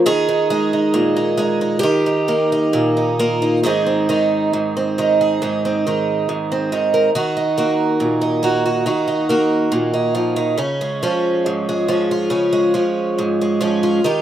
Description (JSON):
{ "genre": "folk, solo fingerstyle acoustic guitar", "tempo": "69 BPM", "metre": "4/4", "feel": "rubato", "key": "Ab major", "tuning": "A4 = 442 Hz", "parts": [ { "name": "picked twelve-string acoustic guitar", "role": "solo", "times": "0.0-14.2 s", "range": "Ab2 to Bb4", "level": "-15 LUFS", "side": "right 1 dB", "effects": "slapback echo" } ], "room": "light reverb", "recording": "recorded outdoors, with no room sound", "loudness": "-15 LUFS", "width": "side -11 dB against mid", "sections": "0.0-3.6 A section; 3.6-14.2 B section", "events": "none", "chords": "0.0 Ebsus4; 1.8 Ebadd9; 3.6 Ab; 7.1 Ebm; 10.6 Db" }